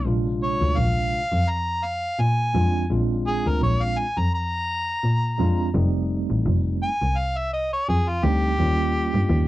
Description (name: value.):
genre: straight-eighth soul blues.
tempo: 84 BPM.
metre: 4/4.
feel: swing 56% on 16ths.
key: Bb mixolydian.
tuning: A4 = 440 Hz.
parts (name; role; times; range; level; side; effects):
mellow harmonica; melody; 0.0-9.5 s; F4 to Bb5; -25 LUFS; equal; overdrive, slapback echo.
tine electric piano; accompaniment; 0.1-9.5 s; C3 to F4; -26 LUFS; right 2 dB; medium stereo tremolo.
clear double bass; bass; 0.1-9.5 s; F1 to Bb2; -22 LUFS; equal; none.
room: little or no reverb.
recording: dry, close 1970s-style studio recording.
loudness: -20 LUFS.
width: side -16 dB against mid.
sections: 0.0-9.5 A section.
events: harmonica solo 0.0-9.5.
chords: 0.1 Bb9; 5.8 F9; 8.6 Eb9.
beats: | 0.06 0.78 1.49 2.20 | 2.91 3.62 4.33 5.04 | 5.75 6.46 7.17 7.88 | 8.59 9.30.